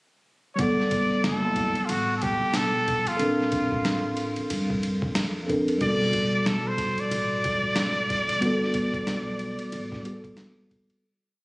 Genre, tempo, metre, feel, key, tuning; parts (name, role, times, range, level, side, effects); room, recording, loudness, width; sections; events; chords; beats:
hip hop, jazz-hop; 92 BPM; 4/4; swing 60% on 16ths; G major; A4 = 438 Hz
trumpet with straight mute; melody; 0.6-10.4 s; F4 to D5; -27 LUFS; equal; tape echo
mellow tine electric piano; accompaniment; 0.6-11.1 s; B2 to F#5; -27 LUFS; equal; medium stereo tremolo
upright bass; bass; 0.6-10.9 s; F#1 to G2; -32 LUFS; equal
boom bap sampler-style drum kit; drums; 0.6-11.0 s; hi-hat, kick drum, ride cymbal, snare drum; -31 LUFS; equal
moderate plate reverb, RT60 2.1 s; recorded on a phone in the room, studio reverb; -23 LUFS; side -24 dB against mid
0.0-0.6 pickup bar; 0.6-11.0 A section
fade-out 8.4-11.0
0.0 N.C.; 0.6 Gmaj9; 3.2 Bbmaj9; 5.8 Gmaj9
| 0.59 1.24 1.90 2.55 | 3.20 3.85 4.50 5.16 | 5.81 6.46 7.11 7.77 | 8.42 9.07 9.72 10.38